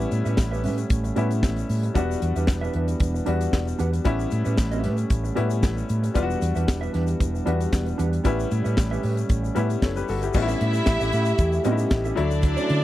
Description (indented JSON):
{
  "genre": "disco",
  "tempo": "114 BPM",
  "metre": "4/4",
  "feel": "straight",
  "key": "unclear",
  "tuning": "A4 = 440 Hz",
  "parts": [
    { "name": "clear grand piano", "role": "accompaniment", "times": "0.0-12.8 s", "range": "F#3 to C#5", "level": "-29 LUFS", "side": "left 6 dB", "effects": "none" },
    { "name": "mellow electric guitar", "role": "accompaniment", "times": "0.0-12.8 s", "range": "C#4 to F#5", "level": "-31 LUFS", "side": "right 6 dB", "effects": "none" },
    { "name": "mellow French horn section", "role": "sustained chords", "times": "0.0-12.8 s", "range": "D3 to G4", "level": "-30 LUFS", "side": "right 2 dB", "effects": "none" },
    { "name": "hollow-body short-scale fingered electric bass", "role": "bass", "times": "0.0-12.8 s", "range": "E1 to D3", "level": "-25 LUFS", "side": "equal", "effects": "none" },
    { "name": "egg shaker", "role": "percussion", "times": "0.0-12.7 s", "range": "none", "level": "-45 LUFS", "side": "left 14 dB", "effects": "none" },
    { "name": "tight funk drum kit", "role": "drums", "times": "0.1-12.8 s", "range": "crash cymbal, hi-hat, kick drum, snare drum", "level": "-22 LUFS", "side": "equal", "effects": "none" },
    { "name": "clear studio string section", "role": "second line", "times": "10.4-12.8 s", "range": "D4 to E5", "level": "-28 LUFS", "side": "left 1 dB", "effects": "none" }
  ],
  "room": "little or no reverb",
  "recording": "dry, close 1970s-style studio recording",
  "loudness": "-21 LUFS",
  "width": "side -14 dB against mid",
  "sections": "0.0-10.3 A section; 10.3-12.8 B section",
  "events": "none",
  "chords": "0.0 A9; 2.0 Em7; 4.1 A9; 6.2 Em7; 8.2 A9; 10.3 A7; 12.2 Dmaj7"
}